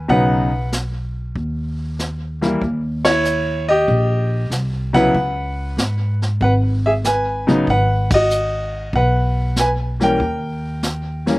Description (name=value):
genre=jazz piano trio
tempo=95 BPM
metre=4/4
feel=swing 69% on 8ths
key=G# minor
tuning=A4 = 439 Hz
part: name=clear grand piano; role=melody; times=0.0-11.4 s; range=C#3 to G#5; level=-17 LUFS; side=equal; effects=slapback echo
part: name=upright bass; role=bass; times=0.0-11.4 s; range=G#1 to G#2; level=-20 LUFS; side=equal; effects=none
part: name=vintage brush drum kit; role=drums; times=0.1-11.4 s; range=brushed snare drum, hi-hat, kick drum, ride cymbal, snare drum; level=-24 LUFS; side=equal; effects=none
room=little or no reverb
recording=recorded outdoors, with no room sound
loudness=-16 LUFS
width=side -20 dB against mid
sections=0.0-11.4 A section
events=band accent 2.9-3.2, 8.0-8.3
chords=0.0 G#m7 (rootless); 2.6 D#7b9; 5.1 C#5; 7.7 G#m7; 10.2 D#